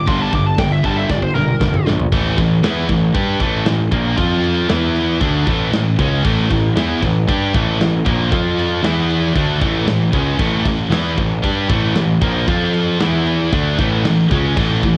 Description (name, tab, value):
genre	heavy metal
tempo	116 BPM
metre	4/4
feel	straight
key	unclear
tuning	A4 = 440 Hz
part	high-gain lead guitar	melody	0.0-1.8 s	Bb4 to D6	-24 LUFS	equal	distortion, cassette tape
part	scooped high-gain guitar	riff	0.0-15.0 s	G2 to G4	-22 LUFS	equal	distortion, cassette tape
part	scooped high-gain guitar	riff	0.0-15.0 s	G2 to G4	-24 LUFS	equal	distortion, cassette tape
part	fuzz picked electric bass	bass	0.1-15.0 s	F1 to G2	-21 LUFS	equal	overdrive
part	modern studio drum kit	drums	0.1-15.0 s	crash cymbal, kick drum, snare drum, toms	-23 LUFS	equal	cassette tape
room	light reverb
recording	home recording on cassette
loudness	-16 LUFS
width	mono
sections	0.0-2.1 A section; 2.1-15.0 B section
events	lead electric guitar solo 0.0-2.1; drum fill 1.1-2.1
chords	0.0 Gm; 2.1 A5; 4.2 F5; 4.7 E5; 5.2 A; 8.3 F5; 8.8 E5; 9.4 A; 12.5 F5; 13.0 E5; 13.5 A